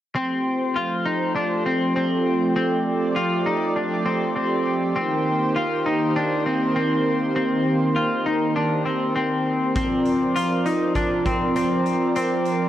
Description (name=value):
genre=dream pop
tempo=100 BPM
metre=4/4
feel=straight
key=unclear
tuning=A4 = 440 Hz
part: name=lush unison pad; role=sustained chords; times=0.2-12.7 s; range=Eb3 to D5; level=-23 LUFS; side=right 2 dB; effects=chorus
part: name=semi-hollow electric guitar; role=arpeggios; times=0.2-12.7 s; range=C4 to F4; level=-22 LUFS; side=left 2 dB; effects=lush chorus, tape echo
part: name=huge arena drum kit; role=drums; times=9.8-12.6 s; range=hi-hat, kick drum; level=-31 LUFS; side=equal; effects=none
room=moderate shimmer reverb, RT60 4.7 s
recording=worn, warbling old tape, cassette tape, warbly pitch drift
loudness=-20 LUFS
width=side -12 dB against mid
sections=0.2-12.7 A section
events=none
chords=0.2 Fadd9; 5.0 Cm7; 9.8 Bbadd9